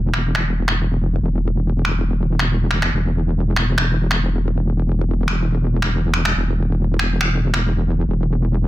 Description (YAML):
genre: heavy wobble dubstep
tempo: 140 BPM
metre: 4/4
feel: swing 54% on 16ths, half-time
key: unclear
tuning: A4 = 440 Hz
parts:
  - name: wobble bass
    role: bass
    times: 0.0-8.7 s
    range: E1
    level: -18 LUFS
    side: equal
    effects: chorus, overdrive
  - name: electronic finger snaps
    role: drums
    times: 0.1-7.6 s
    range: none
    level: -22 LUFS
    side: equal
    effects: overdrive, soft clipping on snare, low-pass filter on snare, small room ambience
room: digital ambience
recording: dense, heavily limited modern master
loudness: -17 LUFS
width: side -16 dB against mid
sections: 0.0-8.7 A section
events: none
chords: none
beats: 0.35 0.78 | 1.21 1.64 2.06 2.49 | 2.92 3.35 3.78 4.21 | 4.63 5.06 5.49 5.92 | 6.35 6.78 7.21 7.63 | 8.06 8.49